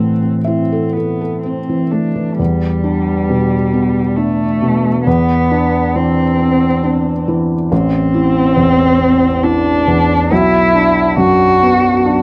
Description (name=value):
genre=neoclassical piano and strings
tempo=68 BPM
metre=3/4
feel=rubato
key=unclear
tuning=A4 = 441 Hz
part: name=muted cello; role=second line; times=0.0-12.2 s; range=G3 to F#4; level=-17 LUFS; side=equal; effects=none
part: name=felt-muted upright piano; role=accompaniment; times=0.0-12.2 s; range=A1 to F#5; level=-16 LUFS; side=equal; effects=none
room=light reverb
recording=dry, close 1970s-style studio recording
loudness=-14 LUFS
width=mono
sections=0.0-2.4 A section; 2.4-12.2 B section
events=none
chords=0.0 Am; 2.4 Em7; 5.1 Cadd9/E; 7.7 Am; 10.3 Bm